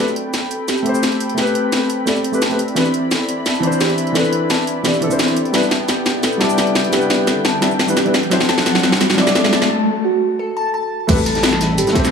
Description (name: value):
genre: liquid drum and bass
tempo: 173 BPM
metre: 4/4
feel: straight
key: A dorian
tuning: A4 = 440 Hz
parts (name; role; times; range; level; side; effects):
- dark concert grand piano; accompaniment; 0.0-12.1 s; E3 to E5; -19 LUFS; left 1 dB; digital delay
- warm analog pad; sustained chords; 0.0-12.1 s; G3 to B5; -22 LUFS; left 1 dB; chorus
- harp-like synth pluck; arpeggios; 0.0-11.9 s; F#4 to A5; -23 LUFS; right 1 dB; chorus, digital delay
- drum and bass drum kit; drums; 0.1-12.1 s; cabasa, crash cymbal, hi-hat, snare drum; -18 LUFS; left 1 dB; overdrive
- riser and impact; sound effects; 7.4-12.1 s; none; -23 LUFS; right 1 dB; none
- dark detuned saw bass; bass; 11.1-12.1 s; G1 to A1; -21 LUFS; equal; none
- crunchy breakbeat drum kit; drums; 11.1-12.0 s; hi-hat, snare drum; -24 LUFS; left 1 dB; high-pass filter on hats, high-pass filter on snare, high-pass filter on room
- electronic kick drum; drums; 11.1-12.0 s; none; -16 LUFS; equal; overdrive
room: moderate digital room reverb, RT60 1.1 s, small room ambience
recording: none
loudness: -14 LUFS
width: side -6 dB against mid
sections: 0.0-11.1 A section; 11.1-12.1 B section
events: build-up 0.0-11.1; drum fill 0.0-9.7; filter sweep on synth pluck 0.0-11.1; riser 7.4-9.7; break 9.7-11.1; drop 11.1-12.1; impact 11.1-12.1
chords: 0.0 Am9; 2.6 Cmaj9; 5.4 Em7; 8.3 D9; 11.1 Am9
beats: 0.34 0.68 1.03 | 1.38 1.72 2.07 2.42 | 2.76 3.11 3.46 3.81 | 4.15 4.50 4.84 5.19 | 5.54 5.89 6.23 6.58 | 6.93 7.27 7.62 7.97 | 8.31 8.66 9.01 9.35 | 9.70 10.05 10.39 10.74 | 11.09 11.44 11.78